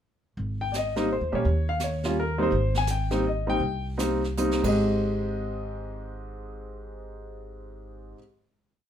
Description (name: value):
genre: jazz piano trio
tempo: 143-168 BPM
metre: 3/4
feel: swing 64% on 8ths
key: Ab major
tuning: A4 = 440 Hz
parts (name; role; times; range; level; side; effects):
- upright bass; bass; 0.4-8.1 s; Ab1 to Bb2; -30 LUFS; equal; none
- jazz brush drum kit; drums; 0.4-4.7 s; brushed snare drum, crash cymbal, hi-hat, kick drum, snare drum; -36 LUFS; right 4 dB; none
- warm concert grand piano; melody; 0.6-8.2 s; Ab2 to Ab5; -27 LUFS; equal; none
room: light reverb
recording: minimal, uncompressed stereo recording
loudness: -24 LUFS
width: side -10 dB against mid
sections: 0.4-4.8 A section; 4.8-7.3 final hit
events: slowing down 2.5-4.8; drum fill 4.4-4.8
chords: 0.4 Abmaj7; 1.4 Eb7; 2.5 Abmaj7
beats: | 0.37 0.73 1.09 | 1.45 1.80 2.16 | 2.52 2.87 3.24 | 3.61 3.99 4.38 | 4.79 5.21 5.63 | 6.05 6.46 6.88